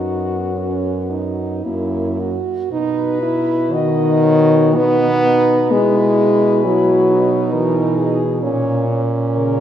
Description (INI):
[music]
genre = classical, lyrical piece for horn quartet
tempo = 54-69 BPM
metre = 3/4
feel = rubato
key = B major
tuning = A4 = 440 Hz
[part]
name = clear French horn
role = melody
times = 0.0-9.6 s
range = F#4 to D#5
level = -24 LUFS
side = left 5 dB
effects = none
[part]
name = mellow French horn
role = second line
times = 0.0-9.6 s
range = C#4 to F#4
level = -21 LUFS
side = right 4 dB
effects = none
[part]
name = mellow French horn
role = accompaniment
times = 0.0-9.6 s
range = C#3 to B3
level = -16 LUFS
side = left 1 dB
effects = none
[part]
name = warm French horn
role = bass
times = 0.0-9.6 s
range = F#2 to B2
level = -21 LUFS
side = right 1 dB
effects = none
[sound]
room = wet church reverb, RT60 2.5 s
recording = heard from further back in the room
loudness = -14 LUFS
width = side -10 dB against mid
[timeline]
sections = 0.0-2.7 A section; 2.7-9.6 B section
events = none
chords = 0.0 B/F#; 1.6 F#; 2.7 B; 5.7 Emaj9/B; 8.4 F#/A# (rootless)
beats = 0.53 1.64 | 2.72 3.72 4.76 | 5.72 6.66 7.54 | 8.43 9.37